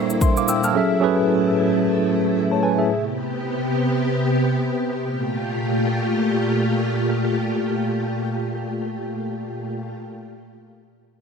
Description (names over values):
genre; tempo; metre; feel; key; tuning
amapiano; free time; none; none; unclear; A4 = 440 Hz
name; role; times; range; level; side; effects
tine electric piano; accompaniment; 0.0-3.0 s; F#3 to F6; -18 LUFS; right 1 dB; medium stereo tremolo
soft string machine; sustained chords; 0.0-10.0 s; A2 to G4; -22 LUFS; equal; ensemble chorus, sidechain pumping
electronic shaker and kick drum; drums; 0.1-0.7 s; none; -21 LUFS; equal; none
room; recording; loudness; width
light reverb; none; -19 LUFS; side -6 dB against mid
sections
0.0-5.0 A section; 5.0-9.3 B section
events
none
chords
0.0 Gm9; 0.7 F#m9; 2.9 Cmaj7(no3); 5.0 Gm9